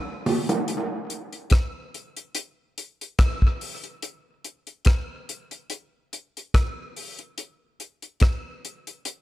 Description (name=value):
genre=reggae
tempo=72 BPM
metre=4/4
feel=swing 56% on 16ths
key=none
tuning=none
part: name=damped 70s drum kit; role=drums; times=0.3-9.2 s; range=hi-hat, kick drum, rim click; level=-22 LUFS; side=equal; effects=none
part: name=bongos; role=percussion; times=0.3-0.7 s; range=none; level=-25 LUFS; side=right 2 dB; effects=tape echo
room=little or no reverb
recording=echo-heavy mix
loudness=-23 LUFS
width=side -16 dB against mid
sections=0.7-9.2 A section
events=none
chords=none